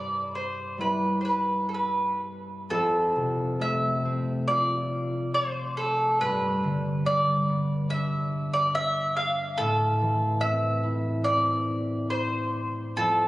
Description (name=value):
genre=celtic folk, Celtic slow air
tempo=70 BPM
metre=4/4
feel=uneven beats, rubato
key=G mixolydian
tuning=A4 = 435 Hz
part: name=mandolin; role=melody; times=0.0-13.3 s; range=A4 to F5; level=-26 LUFS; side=right 1 dB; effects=none
part: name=concert harp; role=accompaniment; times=0.0-13.3 s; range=F2 to F4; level=-28 LUFS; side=equal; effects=none
room=wet church reverb, RT60 3.5 s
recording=recorded on a phone in the room, club reverb, compression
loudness=-24 LUFS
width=side -17 dB against mid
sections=0.0-2.7 A section; 2.7-13.3 B section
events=none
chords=0.0 G6; 2.7 F; 6.2 G; 9.6 Am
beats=0.79 1.73 | 2.70 3.60 4.49 5.35 | 6.21 7.06 7.90 8.75 | 9.59 10.42 11.25 12.10 | 12.97